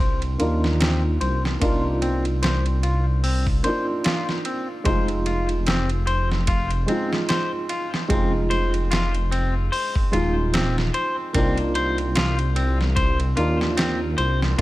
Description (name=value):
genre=trip hop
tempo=74 BPM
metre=4/4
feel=swing 57% on 16ths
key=C minor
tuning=A4 = 439 Hz
part: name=felt-muted upright piano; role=accompaniment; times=0.0-14.6 s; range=Ab3 to F4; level=-26 LUFS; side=right 1 dB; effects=harmonic tremolo, tape echo
part: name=clean electric guitar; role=arpeggios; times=0.0-14.6 s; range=C4 to C5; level=-27 LUFS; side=left 3 dB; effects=vintage 12-bit sampler grit, low-pass filter, ping-pong delay
part: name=dark detuned saw bass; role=bass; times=0.0-14.6 s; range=Eb1 to Eb2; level=-23 LUFS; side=equal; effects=none
part: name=dusty soul sampler-style drum kit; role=drums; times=0.2-14.6 s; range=hi-hat, kick drum, ride cymbal, snare drum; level=-25 LUFS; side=equal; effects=none
room=light reverb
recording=none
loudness=-20 LUFS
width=side -17 dB against mid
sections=0.0-14.6 A section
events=filter sweep on clean electric guitar 0.0-14.6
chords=0.0 Cm11; 4.9 Fm7; 11.3 Cm11